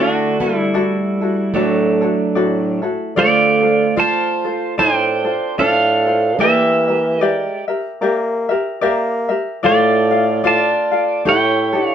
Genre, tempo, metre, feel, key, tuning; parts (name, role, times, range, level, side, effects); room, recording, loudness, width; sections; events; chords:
Hawaiian; 74 BPM; 4/4; swing 58% on 8ths; D major, D minor from 3.2 s; A4 = 440 Hz
pedal steel guitar; melody; 0.0-11.9 s; F#3 to A5; -17 LUFS; right 2 dB
fingerpicked plugged-in steel-string acoustic guitar; second line; 0.0-11.9 s; A3 to F4; -21 LUFS; right 5 dB
tenor ukulele; accompaniment; 0.0-11.9 s; E4 to F5; -20 LUFS; left 4 dB
mellow bassoon; bass; 0.0-11.8 s; A2 to Bb3; -20 LUFS; equal
moderate studio reverb, RT60 0.6 s; band playing live in one room; -14 LUFS; side -9 dB against mid
0.0-3.2 A section; 3.2-11.9 B section
0.0 Dadd9; 3.2 Dm7; 6.4 Em7b5; 9.6 Dm/A; 11.3 A7